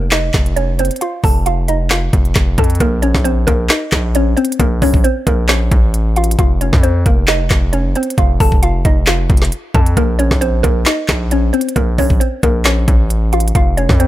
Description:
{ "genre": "hip hop, trap", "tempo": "134 BPM", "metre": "4/4", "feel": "half-time", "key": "Bb harmonic minor", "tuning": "A4 = 439 Hz", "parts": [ { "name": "mallet-like synth pluck", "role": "melody", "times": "0.0-14.1 s", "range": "Bb3 to A5", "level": "-18 LUFS", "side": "equal", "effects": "chorus, phaser, digital delay" }, { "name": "distorted 808-style bass", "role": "bass", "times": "0.0-14.1 s", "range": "F1 to F2", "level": "-16 LUFS", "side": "equal", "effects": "distortion" }, { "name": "trap drum kit", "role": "drums", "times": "0.1-14.1 s", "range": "handclaps, hi-hat, kick drum, snare drum", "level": "-14 LUFS", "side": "equal", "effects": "none" } ], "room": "little or no reverb", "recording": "none", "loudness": "-12 LUFS", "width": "side -14 dB against mid", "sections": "0.0-2.8 A section; 2.8-14.1 B section", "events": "none", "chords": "0.0 F; 2.8 Bbmadd9; 6.4 N.C.; 10.0 Bbmadd9; 13.6 F5" }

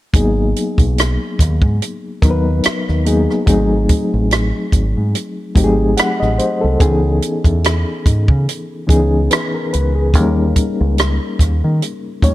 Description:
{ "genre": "R&B, neo-soul", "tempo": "72 BPM", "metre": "4/4", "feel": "swing 55% on 16ths", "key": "G# minor", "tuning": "A4 = 440 Hz", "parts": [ { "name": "reed electric piano", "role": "accompaniment", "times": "0.1-12.3 s", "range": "D#3 to F#5", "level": "-18 LUFS", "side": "left 2 dB", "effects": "fast tremolo" }, { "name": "deep dub fingered electric bass", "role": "bass", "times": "0.1-12.3 s", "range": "G#1 to D#3", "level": "-16 LUFS", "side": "equal", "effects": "none" }, { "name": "compact cocktail drum kit", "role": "drums", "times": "0.1-12.3 s", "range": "hi-hat, kick drum, rim click", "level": "-15 LUFS", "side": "right 1 dB", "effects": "none" } ], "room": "light reverb, small room ambience", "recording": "none", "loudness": "-13 LUFS", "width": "side -15 dB against mid", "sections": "0.1-12.3 A section", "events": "none", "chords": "0.1 G#m9; 3.5 G#7b9; 6.8 C#m9; 10.1 D#7" }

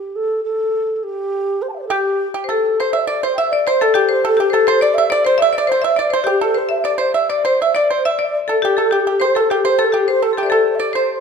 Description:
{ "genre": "chinese traditional, Chinese chamber ensemble", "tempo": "103 BPM", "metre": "2/4", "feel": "rubato", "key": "C gong mode", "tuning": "A4 = 440 Hz", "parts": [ { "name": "breathy mellow xiao", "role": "melody", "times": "0.0-11.2 s", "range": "G4 to A5", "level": "-18 LUFS", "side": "right 2 dB", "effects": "none" }, { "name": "marimba with hard mallets", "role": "second line", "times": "1.9-11.2 s", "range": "G4 to C6", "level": "-18 LUFS", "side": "left 7 dB", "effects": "none" }, { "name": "pipa", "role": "second line", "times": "1.9-11.2 s", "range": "G4 to E5", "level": "-20 LUFS", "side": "right 5 dB", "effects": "none" } ], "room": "moderate recital hall reverb, RT60 1.8 s", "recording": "dark, warm production", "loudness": "-14 LUFS", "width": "side -6 dB against mid", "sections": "0.0-2.8 A section; 2.8-11.2 B section", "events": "none", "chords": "none" }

